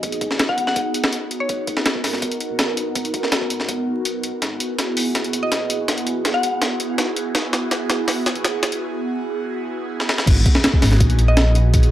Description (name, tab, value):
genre	drum and bass, jungle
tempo	164 BPM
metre	4/4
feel	straight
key	G# minor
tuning	A4 = 441 Hz
part	mallet-like synth pluck	melody	0.0-1.8, 5.4-6.5, 11.3-11.8 s	C#5 to F#5	-25 LUFS	left 1 dB	chorus, dub echo
part	airy breathy pad	sustained chords	0.0-11.9 s	B3 to A#4	-24 LUFS	right 1 dB	chorus, phaser
part	dark detuned saw bass	bass	0.0-11.9 s	G#1 to B1	-19 LUFS	equal	high-pass filter
part	breakbeat sampler-style drum kit	drums	0.0-11.9 s	crash cymbal, hi-hat, kick drum, snare drum	-19 LUFS	equal	high-pass filter on hats, high-pass filter on kick, high-pass filter on snare, high-pass filter on cymbals
room	light reverb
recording	vinyl crackle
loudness	-18 LUFS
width	side -13 dB against mid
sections	0.0-10.3 A section; 10.3-11.9 B section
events	build-up 0.0-10.3; filter sweep on analog synth pad 0.0-10.3; drum fill 4.4-8.8, 10.0; break 8.8-10.3; drop 10.3-11.9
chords	0.0 G#m7; 4.4 F#9sus4/G#; 10.3 G#m7